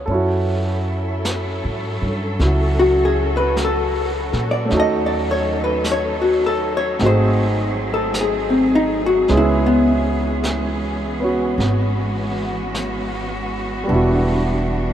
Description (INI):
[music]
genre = jazz ballad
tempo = 52 BPM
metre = 4/4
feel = swing 67% on 8ths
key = F# minor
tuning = A4 = 440 Hz
[part]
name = warm baby grand piano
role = accompaniment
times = 0.0-14.9 s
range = G3 to C#5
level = -22 LUFS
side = right 2 dB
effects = none
[part]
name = upright bass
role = bass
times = 0.0-14.9 s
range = E1 to A#2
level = -22 LUFS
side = equal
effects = none
[part]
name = rich studio cello section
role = sustained chords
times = 0.1-14.9 s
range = E3 to A4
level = -26 LUFS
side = equal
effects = none
[part]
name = jazz brush drum kit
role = drums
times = 0.1-14.9 s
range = brushed snare drum, hi-hat, snare drum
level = -32 LUFS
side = equal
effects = none
[part]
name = vintage hollow-body jazz guitar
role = melody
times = 2.8-9.9 s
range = B3 to D#5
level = -19 LUFS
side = left 2 dB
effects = none
[sound]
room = moderate huge ambient reverb, RT60 8.2 s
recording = in a vast, echoing space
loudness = -16 LUFS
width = side -10 dB against mid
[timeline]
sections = 0.1-14.9 A section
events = hollow-body jazz guitar solo 0.1-14.9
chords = 0.1 F#m7; 4.7 D#m7b5; 7.0 G#7b9; 9.3 C#m7; 13.9 Em9